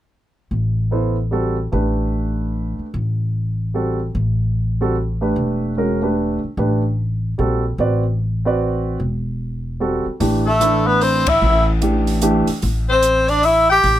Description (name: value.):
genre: modal jazz.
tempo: 149 BPM.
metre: 3/4.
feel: swing 64% on 8ths.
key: A dorian.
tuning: A4 = 440 Hz.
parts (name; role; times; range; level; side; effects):
upright bass; bass; 0.5-14.0 s; E1 to Bb1; -20 LUFS; equal; none.
warm concert grand piano; accompaniment; 0.9-12.5 s; E3 to D5; -20 LUFS; right 2 dB; none.
open jazz drum kit; drums; 10.2-14.0 s; hi-hat, kick drum, ride cymbal; -28 LUFS; equal; none.
breathy tenor saxophone; melody; 10.5-14.0 s; A3 to G4; -15 LUFS; equal; none.
growling alto saxophone; second line; 10.5-14.0 s; A4 to G5; -19 LUFS; left 6 dB; none.
room: light reverb.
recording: close, detailed microphones.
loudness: -16 LUFS.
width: side -12 dB against mid.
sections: 0.5-10.2 A section; 10.2-14.0 B section.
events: band accent 11.2.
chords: 0.5 Am11; 10.2 Am7.